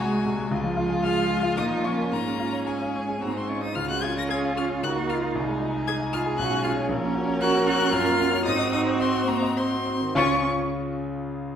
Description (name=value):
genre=quick classical-period movement for piano quintet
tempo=100-118 BPM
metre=3/4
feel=rubato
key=Db major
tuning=A4 = 443 Hz
part: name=warm violin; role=melody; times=0.0-10.5 s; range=Ab5 to Bb6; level=-29 LUFS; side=left 5 dB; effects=none
part: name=rich violin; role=second line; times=0.0-10.5 s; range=F4 to Bb4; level=-32 LUFS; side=left 3 dB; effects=none
part: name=warm cello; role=second line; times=0.0-10.5 s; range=Ab3 to Bb4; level=-29 LUFS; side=right 3 dB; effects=none
part: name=warm concert grand piano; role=accompaniment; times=0.0-11.6 s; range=Bb1 to Eb6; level=-27 LUFS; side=left 1 dB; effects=none
part: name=warm viola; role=accompaniment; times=0.0-10.5 s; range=Ab3 to Eb4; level=-29 LUFS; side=right 3 dB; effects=none
room=wet recital hall reverb, RT60 1.5 s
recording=recorded in a church or concert hall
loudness=-22 LUFS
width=side -8 dB against mid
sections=0.0-10.2 A section; 10.2-11.6 B section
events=slowing down 6.1-10.2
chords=0.0 Ab7/C; 0.5 Db; 1.6 Bbm; 2.1 Db/Ab; 3.2 Ab; 3.8 Db; 4.8 Ebm7/Db; 5.4 Ab/C; 6.4 Db7/Cb; 6.9 Gb/Bb; 7.9 Gb; 8.5 Ab7; 10.2 Db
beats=0.00 | 0.51 1.03 1.57 | 2.11 2.67 3.22 | 3.76 4.30 4.83 | 5.35 5.87 6.38 | 6.89 7.41 7.93 | 8.46 9.00 9.57 | 10.16 10.73 11.29